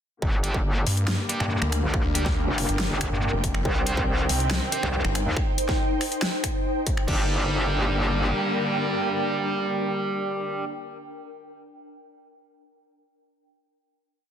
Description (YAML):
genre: heavy wobble dubstep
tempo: 140 BPM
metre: 4/4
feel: half-time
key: G minor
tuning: A4 = 440 Hz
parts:
  - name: rich studio string section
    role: sustained chords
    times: 0.2-10.6 s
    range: D3 to C4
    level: -32 LUFS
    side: left 2 dB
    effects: sidechain pumping, low-pass filter
  - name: metallic wobble bass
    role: bass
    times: 0.2-8.3 s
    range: F1 to G2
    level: -26 LUFS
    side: equal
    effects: chorus, overdrive
  - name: electronic kick drum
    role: drums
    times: 0.2-7.2 s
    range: none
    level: -27 LUFS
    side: equal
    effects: distortion, small room ambience
  - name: ethereal airy pad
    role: texture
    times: 1.3-10.8 s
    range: D4 to G5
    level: -30 LUFS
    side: equal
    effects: ensemble chorus, built-in reverb, sidechain pumping
  - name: distorted electric guitar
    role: stabs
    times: 0.4-10.6 s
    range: G3 to C5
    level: -29 LUFS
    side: right 2 dB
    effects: overdrive, vintage 12-bit sampler grit, ping-pong delay
  - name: dubstep drum kit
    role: drums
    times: 0.4-7.2 s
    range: crash cymbal, finger snaps, hi-hat, snare drum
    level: -30 LUFS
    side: left 1 dB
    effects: small room ambience
  - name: snarling distorted saw bass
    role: bass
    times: 0.9-5.2 s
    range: F1 to G2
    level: -26 LUFS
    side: equal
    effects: distortion, overdrive
room: light reverb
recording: dense, heavily limited modern master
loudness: -22 LUFS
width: side -9 dB against mid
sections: 0.2-7.1 drop; 7.1-10.5 final chord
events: drop 0.2-7.1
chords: 0.2 Gm; 3.7 Cm; 7.1 Gm